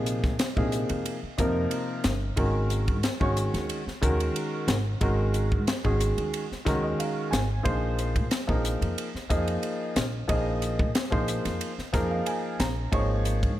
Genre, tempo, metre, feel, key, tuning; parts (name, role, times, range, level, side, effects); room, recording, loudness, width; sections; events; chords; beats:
electric jazz fusion; 91 BPM; 4/4; straight; Bb minor; A4 = 438 Hz
warm baby grand piano; accompaniment; 0.0-13.5 s; C3 to Bb5; -28 LUFS; equal
upright bass; bass; 0.0-13.6 s; G1 to Bb2; -28 LUFS; equal
crisp fusion drum kit; drums; 0.1-13.6 s; hi-hat, kick drum, ride cymbal, snare drum; -30 LUFS; equal
light reverb, studio reverb; -24 LUFS; side -14 dB against mid
0.0-13.6 A section
grand piano fill 6.3-7.7, 11.6-12.9
0.0 Bb9sus4; 2.4 Ab9sus4; 7.7 Bb9sus4; 12.9 Absus24
0.40 1.06 1.72 | 2.38 3.04 3.70 4.36 | 5.02 5.68 6.34 7.00 | 7.66 8.31 8.97 9.63 | 10.29 10.95 11.61 12.27 | 12.93